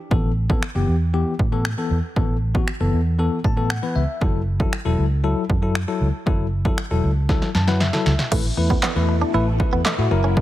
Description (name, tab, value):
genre	dance-pop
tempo	117 BPM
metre	4/4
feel	straight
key	unclear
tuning	A4 = 442 Hz
part	bell-like tine electric piano	accompaniment	0.1-10.4 s	E3 to A5	-24 LUFS	left 4 dB	fast stereo tremolo, sidechain pumping
part	vintage muted fingered electric bass	bass	0.1-10.4 s	E1 to A2	-21 LUFS	right 1 dB	sidechain pumping
part	punchy analog drum machine	drums	0.1-10.4 s	crash cymbal, finger snaps, handclaps, kick drum, snare drum	-22 LUFS	right 1 dB	overdrive
part	phased string machine	sustained chords	8.3-10.4 s	B2 to E4	-27 LUFS	left 2 dB	ensemble chorus, phaser, sidechain pumping
part	direct-recorded clean electric guitar	riff	8.3-10.3 s	A3 to E4	-27 LUFS	right 6 dB	analog chorus
room	little or no reverb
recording	none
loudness	-18 LUFS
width	side -14 dB against mid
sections	0.0-8.3 A section; 8.3-10.4 B section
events	tine electric piano fill 3.2-4.2, 7.3-8.3; drum fill 7.3-8.3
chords	0.1 Asus2; 4.2 F#m7; 8.3 Asus2